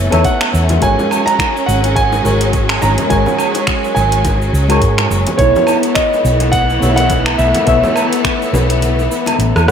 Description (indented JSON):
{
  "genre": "sunset chillout",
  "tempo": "105 BPM",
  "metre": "4/4",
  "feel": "swing 56% on 16ths",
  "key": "G# phrygian",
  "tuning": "A4 = 437 Hz",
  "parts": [
    { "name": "mellow FM electric piano", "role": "accompaniment", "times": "0.0-9.7 s", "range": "G#3 to F#5", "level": "-18 LUFS", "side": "left 2 dB", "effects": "chorus, auto-pan, analog delay, shimmer reverb" },
    { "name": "clear symphonic string section", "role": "sustained chords", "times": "0.0-9.7 s", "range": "E3 to C#4", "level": "-20 LUFS", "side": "equal", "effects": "shimmer reverb" },
    { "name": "hollow-body short-scale fingered electric bass", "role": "bass", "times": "0.0-9.7 s", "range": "F#1 to G#2", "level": "-15 LUFS", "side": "equal", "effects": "none" },
    { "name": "deep house drum kit", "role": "drums", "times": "0.1-9.7 s", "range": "cabasa, finger snaps, hi-hat, rim click, woodblock", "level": "-20 LUFS", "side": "right 2 dB", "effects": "overdrive" },
    { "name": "bongos and congas", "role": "percussion", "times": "0.1-9.7 s", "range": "none", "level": "-25 LUFS", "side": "left 2 dB", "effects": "none" },
    { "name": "dark concert grand piano", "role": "melody", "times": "0.2-9.3 s", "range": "C#5 to A#5", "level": "-17 LUFS", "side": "right 2 dB", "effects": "analog delay, shimmer reverb" },
    { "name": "electronic kick drum", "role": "drums", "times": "0.2-8.4 s", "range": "none", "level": "-18 LUFS", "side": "equal", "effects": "none" }
  ],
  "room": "wet plate reverb, RT60 1.6 s, digital ambience",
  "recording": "dreamy mix soaked in reverb",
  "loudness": "-11 LUFS",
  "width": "side -8 dB against mid",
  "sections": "0.0-9.7 A section",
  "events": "kick drops out 8.8-9.7; drum fill 9.5",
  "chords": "0.0 B9sus4; 0.8 G#9sus4; 5.4 B9sus4"
}